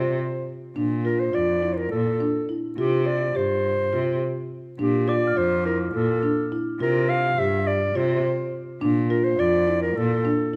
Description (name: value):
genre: contemporary instrumental, chamber music in an uneven meter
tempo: 209 BPM (eighths)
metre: 7/8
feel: straight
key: Bb lydian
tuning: A4 = 443 Hz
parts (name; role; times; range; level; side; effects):
- mellow clarinet; melody; 0.0-10.6 s; G4 to F5; -27 LUFS; equal; none
- marimba with soft mallets; arpeggios; 0.0-10.6 s; D4 to G4; -28 LUFS; equal; none
- rich cello; bass; 0.0-10.2 s; F2 to C3; -29 LUFS; equal; none
- glockenspiel with rubber mallets; texture; 5.1-7.2 s; D6 to F6; -38 LUFS; equal; none
room: moderate recital hall reverb, RT60 1.7 s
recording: none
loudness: -23 LUFS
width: mono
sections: 0.0-10.6 A section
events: none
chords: 0.0 Csus4; 0.8 Bb; 2.8 Csus4; 4.8 Bb; 6.8 Csus4; 8.8 Bb